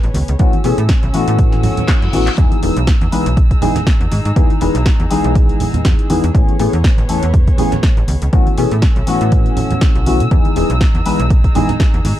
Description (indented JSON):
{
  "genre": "filtered disco house",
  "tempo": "121 BPM",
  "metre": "4/4",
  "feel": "swing 56% on 16ths",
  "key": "E major",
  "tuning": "A4 = 436 Hz",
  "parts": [
    { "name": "dark studio violin section", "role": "sustained chords", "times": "0.0-12.2 s", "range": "B3 to E6", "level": "-26 LUFS", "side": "equal", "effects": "sidechain pumping, low-pass filter" },
    { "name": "slap-like FM bass", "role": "bass", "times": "0.0-12.1 s", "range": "E1 to B2", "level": "-17 LUFS", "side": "equal", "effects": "sidechain pumping, low-pass filter" },
    { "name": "punchy analog drum machine", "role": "drums", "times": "0.0-12.2 s", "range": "handclaps, hi-hat, snare drum", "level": "-25 LUFS", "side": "equal", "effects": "sidechain pumping on hats" },
    { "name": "egg shaker and congas", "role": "percussion", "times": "0.0-12.2 s", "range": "none", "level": "-23 LUFS", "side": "right 2 dB", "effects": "sidechain pumping on perc, low-pass filter on perc" },
    { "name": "dark concert grand piano", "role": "accompaniment", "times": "0.4-11.7 s", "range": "E3 to B4", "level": "-18 LUFS", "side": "left 2 dB", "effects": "phaser, sidechain pumping, low-pass filter" },
    { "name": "electronic kick drum", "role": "drums", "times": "0.4-11.9 s", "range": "none", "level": "-13 LUFS", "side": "equal", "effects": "none" },
    { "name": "reverse cymbal", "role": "sound effects", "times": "1.6-2.4 s", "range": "none", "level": "-30 LUFS", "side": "left 5 dB", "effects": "none" }
  ],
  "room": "studio reverb",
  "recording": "dark, warm production",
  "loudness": "-11 LUFS",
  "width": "side -13 dB against mid",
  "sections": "0.0-12.2 A section",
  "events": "reverse cymbal 1.6-2.4; drum fill 1.9-2.4",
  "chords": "0.4 B9sus4; 2.4 Emaj7; 6.3 Amaj9; 8.3 B9sus4; 10.3 Emaj7"
}